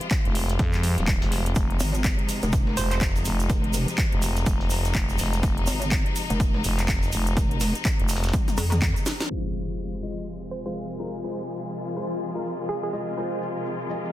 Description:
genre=bass house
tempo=124 BPM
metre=4/4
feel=swing 59% on 16ths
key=F minor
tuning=A4 = 435 Hz
part: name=bright studio string section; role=sustained chords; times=0.0-14.1 s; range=C3 to F4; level=-32 LUFS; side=left 2 dB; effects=sidechain pumping
part: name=house drum kit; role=drums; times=0.0-9.3 s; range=handclaps, hi-hat, snare drum, toms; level=-30 LUFS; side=left 1 dB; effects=overdrive
part: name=dusty soul sampler-style drum kit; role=drums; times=0.1-9.3 s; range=hi-hat, snare drum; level=-39 LUFS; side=left 1 dB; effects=none
part: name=electronic kick drum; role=drums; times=0.1-8.9 s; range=none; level=-25 LUFS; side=equal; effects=overdrive
part: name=growling FM bass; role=bass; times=0.3-8.3 s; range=Eb1 to F2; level=-25 LUFS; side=equal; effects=overdrive, sidechain pumping
part: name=tube shaker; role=percussion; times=1.6-14.1 s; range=none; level=-36 LUFS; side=right 6 dB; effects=none
part: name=pulsing pluck wobble bass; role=bass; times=1.8-8.9 s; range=F1 to F2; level=-25 LUFS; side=equal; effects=chorus, sidechain pumping
part: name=hollow square pluck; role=melody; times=2.8-3.0, 10.5-12.9 s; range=Ab4 to C5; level=-33 LUFS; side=right 5 dB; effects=chorus, dub echo
part: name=dark concert grand piano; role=stabs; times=9.3-14.1 s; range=Ab3 to F5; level=-34 LUFS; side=left 2 dB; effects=sidechain pumping, low-pass filter, dub echo
part: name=impact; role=sound effects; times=9.3-11.2 s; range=none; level=-34 LUFS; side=equal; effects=none
part: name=ethereal airy pad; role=texture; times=10.5-14.1 s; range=F4 to Ab5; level=-33 LUFS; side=left 1 dB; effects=ensemble chorus, built-in reverb, tremolo, sidechain pumping
room=little or no reverb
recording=dense, heavily limited modern master, low-pass filter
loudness=-22 LUFS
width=side -14 dB against mid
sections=0.0-9.3 A section; 9.3-14.1 B section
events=drop 0.0-9.3; drum fill 8.3-9.3; band accent 9.2; impact 9.3-11.2; filter sweep on grand piano 9.3-14.1; filter sweep 9.3-14.1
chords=0.0 Fm

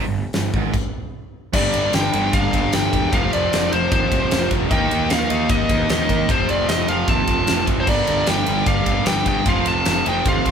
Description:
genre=hard rock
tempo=152 BPM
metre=4/4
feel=straight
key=G minor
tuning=A4 = 444 Hz
part: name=crunchy overdriven guitar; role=riff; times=0.0-10.5 s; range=F2 to Eb4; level=-28 LUFS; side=left 8 dB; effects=none
part: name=overdriven electric guitar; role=riff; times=0.0-10.5 s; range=F2 to Eb4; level=-25 LUFS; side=right 9 dB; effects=none
part: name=fuzz picked electric bass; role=bass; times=0.0-10.5 s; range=E1 to Eb3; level=-26 LUFS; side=left 1 dB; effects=overdrive
part: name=huge arena drum kit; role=drums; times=0.3-10.5 s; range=crash cymbal, hi-hat, kick drum, ride cymbal, snare drum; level=-22 LUFS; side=equal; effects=none
part: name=high-gain lead guitar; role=melody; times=1.5-10.5 s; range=C5 to A5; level=-22 LUFS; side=left 1 dB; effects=distortion
part: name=tight distorted guitar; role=riff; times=1.5-10.5 s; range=F2 to Eb4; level=-26 LUFS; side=equal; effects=distortion
part: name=octave-fuzz lead guitar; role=second line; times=7.1-10.5 s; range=A4 to F5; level=-30 LUFS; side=right 1 dB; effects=distortion
room=light reverb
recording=band playing live in one room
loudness=-16 LUFS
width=side -7 dB against mid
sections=0.0-1.5 A section; 1.5-10.5 B section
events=stop 0.7-1.5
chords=0.0 C#5/G (rootless); 1.5 G5; 3.1 F5; 4.7 Eb; 6.3 F; 7.9 Gm; 9.5 F

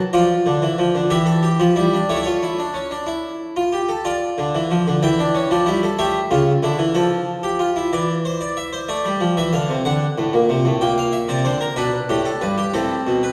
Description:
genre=classical, baroque-style 3-part fugue for harpsichord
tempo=62 BPM (dotted quarters)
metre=6/8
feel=straight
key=D minor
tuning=A4 = 440 Hz
part: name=harpsichord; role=solo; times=0.0-13.3 s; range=G2 to G5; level=-19 LUFS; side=equal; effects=none
room=wet recital hall reverb, RT60 1.8 s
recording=heard from further back in the room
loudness=-19 LUFS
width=mono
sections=0.0-4.1 A section; 4.1-7.9 B section; 7.9-13.3 A section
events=none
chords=0.1 Dm; 1.1 Emadd11; 2.1 A; 4.1 Dm; 5.0 C#dim/E; 6.0 A7; 7.0 Fmaj9; 7.9 Cadd9/E; 8.9 Am; 9.9 D7; 10.8 Gm/Bb; 11.8 G; 12.7 Amadd9

